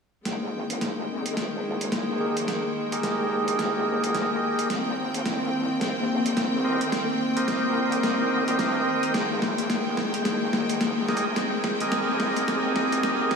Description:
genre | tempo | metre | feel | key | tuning
glitch hop | 108 BPM | 4/4 | swing 60% on 16ths | F minor | A4 = 440 Hz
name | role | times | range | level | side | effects
clear studio string section | sustained chords | 0.2-13.4 s | Eb3 to G5 | -27 LUFS | left 1 dB | none
wobble bass | bass | 0.3-13.3 s | Eb1 to G2 | -35 LUFS | right 1 dB | chorus, tube saturation, high-pass filter
boom bap sampler-style drum kit | drums | 0.3-13.4 s | hi-hat, snare drum | -29 LUFS | left 1 dB | overdrive
tonewheel organ | stabs | 2.2-13.4 s | G4 to Eb5 | -27 LUFS | right 2 dB | overdrive, low-pass filter, diffuse ambient delay
room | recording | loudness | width
wet lush hall reverb, RT60 2.0 s | dreamy mix soaked in reverb, high-pass filter | -23 LUFS | side -5 dB against mid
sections
0.3-13.4 A section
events
build-up 0.3-13.4; drum fill 0.3-13.4; filter sweep on tonewheel organ 0.3-13.4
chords
0.3 Fm11; 4.7 Cm7; 9.1 Fm11

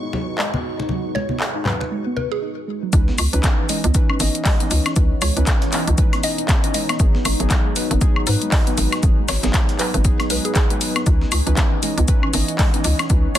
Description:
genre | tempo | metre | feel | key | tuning
deep house | 118 BPM | 4/4 | swing 58% on 16ths | unclear | A4 = 440 Hz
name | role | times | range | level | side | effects
deep dark ambient pad | sustained chords | 0.0-13.4 s | E3 to D#5 | -30 LUFS | left 2 dB | chorus, built-in reverb, sidechain pumping
soft round pluck | arpeggios | 0.0-13.4 s | F#3 to B4 | -29 LUFS | right 4 dB | analog chorus, sidechain pumping, ping-pong delay
string machine, violins | texture | 0.0-2.4 s | C#6 | -41 LUFS | left 1 dB | ensemble chorus, sidechain pumping
congas | percussion | 0.1-2.3 s | none | -26 LUFS | left 2 dB | none
mallet-like synth pluck | melody | 0.4-13.4 s | G#4 to D#5 | -30 LUFS | equal | chorus, phaser, cassette tape, ping-pong delay
deep house drum kit | drums | 0.4-13.4 s | handclaps, hi-hat, woodblock | -23 LUFS | left 1 dB | none
warm analog keys | stabs | 2.9-13.3 s | E3 to D#5 | -26 LUFS | equal | chorus, sidechain pumping, ping-pong delay
hollow knocking FM bass | bass | 2.9-13.4 s | G#1 to G#2 | -20 LUFS | equal | sidechain pumping
breakbeat sampler-style drum kit | drums | 2.9-13.4 s | hi-hat, shaker, snare drum | -31 LUFS | left 4 dB | sidechain pumping on perc, high-pass filter on perc, high-pass filter on snare, sidechain pumping on hats, high-pass filter on hats
electronic kick drum | drums | 2.9-13.2 s | none | -17 LUFS | equal | none
room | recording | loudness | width
little or no reverb | dense, heavily limited modern master | -16 LUFS | side -12 dB against mid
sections
0.0-2.9 A section; 2.9-13.4 B section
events
filter sweep on synth arpeggio sound 0.0-2.9; break 2.4-2.9; drop 2.9-13.4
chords
0.0 G#m7; 2.9 C#m9; 7.0 G#m7; 11.1 C#m9

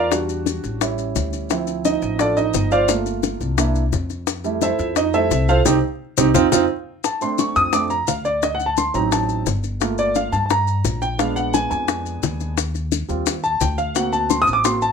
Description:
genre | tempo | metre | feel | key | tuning
Afro-Cuban jazz | 173 BPM | 4/4 | straight | F major | A4 = 440 Hz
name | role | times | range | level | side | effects
warm concert grand piano | accompaniment | 0.0-14.9 s | F3 to Eb6 | -19 LUFS | right 3 dB | none
upright bass | bass | 0.0-14.9 s | G1 to G2 | -24 LUFS | left 1 dB | none
bongos | percussion | 0.1-14.8 s | none | -24 LUFS | left 9 dB | none
maracas | percussion | 0.1-14.9 s | none | -28 LUFS | left 12 dB | none
room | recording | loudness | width
moderate club reverb, RT60 0.7 s | minimal, uncompressed stereo recording | -18 LUFS | side -6 dB against mid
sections
0.0-7.0 A section; 7.0-14.9 A section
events
grand piano solo 0.0-14.9; band accent 5.7-7.0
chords
0.1 Em7; 0.8 A7; 1.5 Dm7; 2.9 Gm7; 3.6 C7; 4.3 Fmaj7; 5.7 Cm; 6.3 F5; 7.0 Dm7; 8.4 D7b9; 9.8 Gm7; 11.2 Bb7b9; 12.6 Eb6; 14.0 D7b13

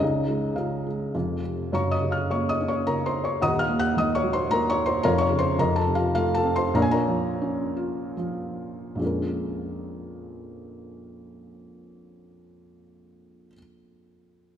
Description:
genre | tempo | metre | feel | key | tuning
classical, lyrical solo piano | 68-113 BPM | 3/4 | rubato | Bb minor | A4 = 443 Hz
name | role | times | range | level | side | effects
felt-muted upright piano | solo | 0.0-14.6 s | Eb1 to Gb6 | -23 LUFS | equal | none
room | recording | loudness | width
wet scoring stage reverb, RT60 2.1 s | recorded in a church or concert hall | -22 LUFS | side -9 dB against mid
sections
0.0-9.0 A section; 9.0-14.0 B section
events
slowing down 5.0-9.0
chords
0.0 Db; 1.1 F5; 1.7 Gbmaj7; 3.4 Ebm; 5.0 Bbm/F; 5.6 F7; 6.7 Bbm

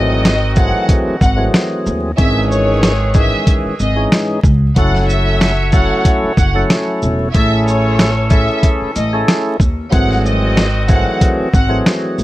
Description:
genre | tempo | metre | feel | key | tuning
hip hop, boom-bap hip-hop | 93 BPM | 4/4 | swing 56% on 16ths | unclear | A4 = 440 Hz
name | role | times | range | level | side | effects
warm studio violin section | melody | 0.0-11.7 s | C#5 to F#5 | -20 LUFS | equal | high-pass filter, low-pass filter
percussive tonewheel organ | accompaniment | 0.0-12.2 s | G#2 to A4 | -18 LUFS | equal | slow rotary speaker, cassette tape, high-pass filter, low-pass filter
warm horn section | stabs | 0.0-12.1 s | D#3 to C#5 | -24 LUFS | right 1 dB | high-pass filter, low-pass filter, digital delay
upright bass | bass | 0.0-12.2 s | E1 to D#2 | -16 LUFS | equal | none
dusty soul sampler-style drum kit | drums | 0.2-12.2 s | hi-hat, kick drum, rim click, shaker, snare drum | -13 LUFS | equal | vintage 12-bit sampler grit
room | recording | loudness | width
light reverb | vinyl crackle | -11 LUFS | side -16 dB against mid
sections
0.0-12.2 A section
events
none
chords
0.0 G#7b9b13; 2.2 C#madd9/G#; 4.8 F#m7; 7.3 Amaj7; 9.9 G#7b9b13

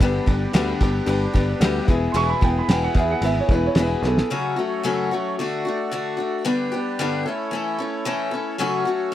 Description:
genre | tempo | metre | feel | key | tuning
folk rock and heartland rock | 112 BPM | 4/4 | straight | unclear | A4 = 443 Hz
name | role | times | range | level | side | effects
dark upright piano | second line | 0.0-4.3 s | G#4 to C#6 | -25 LUFS | right 9 dB | none
dark concert grand piano | accompaniment | 0.0-4.1 s | D4 to B4 | -30 LUFS | left 6 dB | none
picked acoustic archtop guitar | accompaniment | 0.0-9.1 s | E2 to A4 | -23 LUFS | left 4 dB | none
accordion | sustained chords | 0.0-9.1 s | D4 to D5 | -30 LUFS | right 4 dB | none
picked electric bass | bass | 0.0-4.2 s | E1 to E2 | -24 LUFS | equal | none
cloth-damped thuddy drum kit | drums | 0.0-4.3 s | kick drum, ride cymbal, snare drum | -22 LUFS | equal | none
room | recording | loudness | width
little or no reverb | dry, close 1970s-style studio recording | -19 LUFS | side -12 dB against mid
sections
0.0-4.3 A section; 4.3-9.1 B section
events
upright piano solo 0.0-4.3; drum fill 4.0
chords
0.0 G; 1.9 E; 4.3 F#m; 5.4 D; 6.4 G; 7.2 A; 8.6 F#m

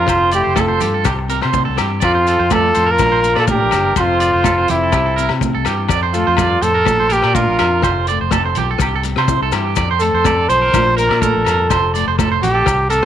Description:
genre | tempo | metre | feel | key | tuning
highlife guitar band | 124 BPM | 4/4 | swing 53% on 16ths | F major | A4 = 440 Hz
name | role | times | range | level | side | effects
warm trumpet | melody | 0.0-13.1 s | E4 to C5 | -15 LUFS | equal | none
clear trumpet | second line | 0.0-5.4 s | C4 to F4 | -26 LUFS | left 10 dB | none
nylon-string guitar | accompaniment | 0.0-13.1 s | F2 to F4 | -26 LUFS | left 10 dB | none
electric guitar at the edge of break-up | arpeggios | 0.0-13.1 s | G4 to D5 | -20 LUFS | right 8 dB | tremolo, tape echo
fingered electric bass | bass | 0.0-13.1 s | F1 to C3 | -21 LUFS | equal | none
vintage drum kit | drums | 0.1-13.1 s | hi-hat, kick drum, rim click | -22 LUFS | left 4 dB | none
agogo bells | percussion | 0.1-12.8 s | none | -26 LUFS | left 11 dB | none
congas | percussion | 0.1-13.0 s | none | -25 LUFS | right 12 dB | none
maracas | percussion | 0.1-13.0 s | none | -31 LUFS | left 15 dB | none
room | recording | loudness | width
moderate spring reverb, RT60 1.4 s, small room reverb | 1960s-style stereo with parts hard left and right | -13 LUFS | side -10 dB against mid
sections
0.0-5.9 A section; 5.9-13.1 B section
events
trumpet solo 5.9-13.1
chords
0.1 F; 1.1 C; 2.0 F; 3.0 Bb; 4.0 F; 4.9 C; 5.9 F; 6.9 Bb; 7.8 F; 8.8 C; 9.8 F; 10.7 Bb; 11.7 F

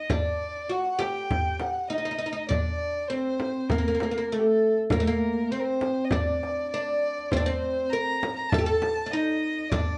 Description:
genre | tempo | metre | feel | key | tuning
Arabic maqam ensemble | 100 BPM | 4/4 | straight | unclear | A4 = 440 Hz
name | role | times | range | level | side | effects
oud | melody | 0.0-10.0 s | A3 to Bb4 | -29 LUFS | equal | none
dark violin | second line | 0.0-10.0 s | G4 to Bb5 | -34 LUFS | equal | none
darbuka | percussion | 0.1-9.9 s | none | -34 LUFS | equal | none
frame drum | percussion | 0.1-9.9 s | none | -32 LUFS | equal | none
room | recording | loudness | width
moderate studio reverb, RT60 0.7 s | band playing live in one room, nothing above 10.5 kHz | -27 LUFS | mono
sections
0.0-10.0 A section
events
none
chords
none

